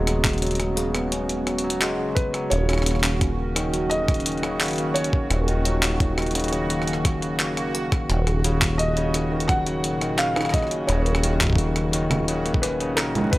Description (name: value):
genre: IDM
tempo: 86 BPM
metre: 4/4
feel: straight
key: Eb minor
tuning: A4 = 443 Hz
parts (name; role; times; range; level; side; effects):
- felt-muted upright piano; melody; 0.0-13.4 s; Ab4 to Gb5; -29 LUFS; equal; analog delay
- hollow soft pad; sustained chords; 0.0-13.4 s; Bb2 to Gb4; -30 LUFS; equal; chorus
- overdriven tine electric piano; arpeggios; 0.0-13.4 s; Db3 to Db4; -26 LUFS; left 1 dB; low-pass filter, tape echo
- deep acid bass; bass; 0.0-13.4 s; Eb1; -26 LUFS; equal; none
- bubbling stepped-filter texture; texture; 0.0-13.4 s; Gb4; -34 LUFS; right 5 dB; chorus, built-in reverb, sidechain pumping
- jungle sampler-style drum kit; drums; 0.1-13.4 s; congas, handclaps, hi-hat, rim click; -26 LUFS; equal; none
- electronic kick drum; drums; 0.2-13.4 s; none; -22 LUFS; equal; none
room: light reverb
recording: dry, gritty hardware recording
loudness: -20 LUFS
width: side -18 dB against mid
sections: 0.0-13.4 A section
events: filter sweep on tine electric piano 0.0-13.4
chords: 0.0 Db7sus4/Eb; 2.5 Ebm7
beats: 0.42 1.12 1.82 | 2.52 3.21 3.91 4.61 | 5.30 6.00 6.70 7.40 | 8.10 8.79 9.49 10.19 | 10.89 11.58 12.28 12.98